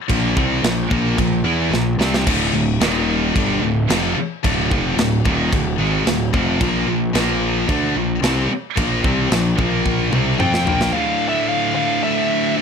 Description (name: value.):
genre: heavy metal.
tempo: 111 BPM.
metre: 4/4.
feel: straight.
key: D minor.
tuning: A4 = 440 Hz.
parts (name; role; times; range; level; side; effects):
scooped high-gain guitar; riff; 0.1-12.6 s; D2 to F4; -22 LUFS; left 14 dB; distortion.
scooped high-gain guitar; riff; 0.1-12.6 s; D2 to F4; -22 LUFS; right 11 dB; distortion.
fuzz picked electric bass; bass; 0.1-10.9 s; D1 to F2; -22 LUFS; equal; overdrive.
tight metal drum kit; drums; 0.1-10.9 s; china cymbal, crash cymbal, kick drum, snare drum, toms; -22 LUFS; equal; none.
high-gain lead guitar; melody; 10.4-12.5 s; E5 to G5; -20 LUFS; equal; distortion.
room: small room ambience.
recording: none.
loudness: -16 LUFS.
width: side -6 dB against mid.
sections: 0.0-10.9 A section; 10.9-12.6 B section.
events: drum fill 1.7-2.3, 9.8-10.9.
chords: 0.0 Bb5; 2.3 D5; 2.8 Eb5; 3.3 Dm; 6.6 Bb5; 10.9 D5.